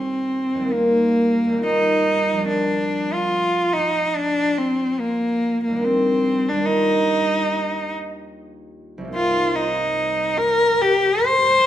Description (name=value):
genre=classical, impressionist duo for cello and harp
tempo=64-74 BPM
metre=4/4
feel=rubato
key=Eb major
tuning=A4 = 441 Hz
part: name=rich cello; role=melody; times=0.0-11.7 s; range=Bb3 to C5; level=-18 LUFS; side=equal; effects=none
part: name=concert harp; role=accompaniment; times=0.0-11.7 s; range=Bb1 to F4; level=-24 LUFS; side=equal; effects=none
room=moderate recital hall reverb, RT60 1.4 s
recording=none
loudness=-17 LUFS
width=side -11 dB against mid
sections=0.0-11.7 A section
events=none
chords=0.0 Ebadd9; 2.5 Bbsus2; 5.8 Ebmaj9; 9.1 Cm7